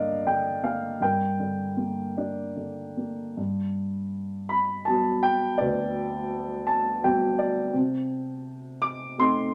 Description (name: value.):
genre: classical, lyrical solo piano.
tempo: 73-88 BPM.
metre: 3/4.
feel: rubato.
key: G minor, G major from 3.4 s.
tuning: A4 = 440 Hz.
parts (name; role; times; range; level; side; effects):
dark grand piano; solo; 0.0-9.5 s; D2 to D6; -27 LUFS; equal; none.
room: wet studio reverb, RT60 0.5 s.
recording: none.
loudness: -27 LUFS.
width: mono.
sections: 0.0-3.4 A section; 3.4-9.5 B section.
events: grand piano fill 6.3-7.7.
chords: 0.0 Gm; 3.4 Gmaj7; 7.7 Cm6.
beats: 0.27 | 1.02 1.78 2.57 | 3.38 4.14 4.87 | 5.60 6.32 7.04 | 7.74 8.45 9.19.